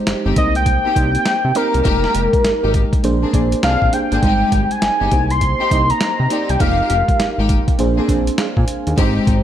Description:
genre	R&B, new jack swing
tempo	101 BPM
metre	4/4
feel	swing 63% on 16ths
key	F dorian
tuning	A4 = 440 Hz
part	mellow FM electric piano	accompaniment	0.0-9.4 s	G3 to Ab5	-21 LUFS	right 2 dB	chorus
part	fat analog bass	bass	0.1-9.4 s	F1 to C3	-19 LUFS	equal	none
part	boom bap sampler-style drum kit	drums	0.1-9.4 s	hi-hat, kick drum, snare drum	-19 LUFS	equal	none
part	warm symphonic string section	stabs	0.3-9.3 s	Ab3 to Ab4	-24 LUFS	left 4 dB	none
part	warm velvety synth lead	melody	0.4-7.8 s	Bb4 to C6	-18 LUFS	equal	chorus
room	light reverb, digital ambience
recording	dark, warm production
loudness	-14 LUFS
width	side -10 dB against mid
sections	0.0-9.4 A section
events	none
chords	0.4 Cm7; 1.8 Fm11; 3.0 Bb9; 4.2 Abmaj7; 5.1 Cm7; 6.6 Fm11; 7.8 Bb9

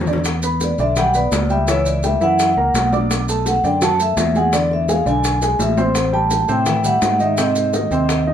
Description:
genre	Afro-Cuban jazz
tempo	168 BPM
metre	4/4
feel	straight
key	E minor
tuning	A4 = 440 Hz
part	fingered electric bass	bass	0.0-8.3 s	A1 to A2	-21 LUFS	equal	none
part	bongos	percussion	0.0-8.3 s	none	-26 LUFS	left 3 dB	none
part	congas	percussion	0.0-8.3 s	none	-26 LUFS	equal	none
part	warm upright piano	accompaniment	0.1-8.3 s	C3 to D6	-21 LUFS	right 2 dB	none
part	maracas	percussion	0.1-8.3 s	none	-29 LUFS	right 2 dB	none
part	vibraphone with soft mallets	melody	0.6-8.3 s	C5 to A5	-18 LUFS	equal	none
room	moderate studio reverb, RT60 0.5 s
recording	band playing live in one room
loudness	-15 LUFS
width	side -9 dB against mid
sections	0.2-8.3 A section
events	drum fill 0.0, 5.4-6.0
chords	0.2 Em7; 1.7 C#dim; 2.4 F#7; 3.1 Bm7; 4.5 E7; 6.0 Am7; 7.4 G#

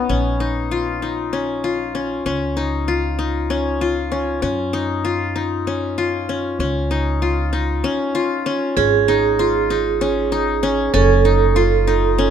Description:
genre	contemporary instrumental, chamber music in an uneven meter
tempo	194 BPM (eighths)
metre	7/8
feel	straight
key	Db mixolydian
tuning	A4 = 442 Hz
part	qanun	arpeggios	0.0-12.3 s	Cb4 to F4	-20 LUFS	left 4 dB	none
part	upright bass	bass	0.0-12.3 s	Gb1 to Gb2	-22 LUFS	equal	none
part	vibraphone with medium hard mallets	second line	8.8-12.3 s	Ab4 to A4	-17 LUFS	right 17 dB	none
room	little or no reverb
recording	close, detailed microphones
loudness	-17 LUFS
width	side -8 dB against mid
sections	0.0-8.8 A section; 8.8-12.3 B section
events	none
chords	0.1 Bbm; 2.3 Db; 4.4 Gb5; 6.6 Db; 8.8 Ab5; 10.9 Gbm

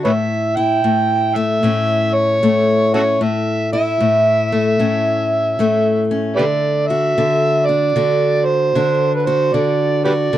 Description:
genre	acoustic country blues, solo or duo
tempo	76 BPM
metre	4/4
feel	swing 64% on 8ths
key	A major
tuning	A4 = 440 Hz
part	overdriven harmonica	melody	0.0-10.4 s	F#4 to G5	-17 LUFS	right 2 dB	none
part	fingerpicked steel-string acoustic guitar	accompaniment	0.0-10.4 s	A2 to F#4	-17 LUFS	left 2 dB	none
room	moderate small room reverb, RT60 0.5 s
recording	dark, warm production, vinyl crackle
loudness	-14 LUFS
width	side -12 dB against mid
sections	0.0-10.4 A section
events	none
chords	0.1 A; 6.4 D

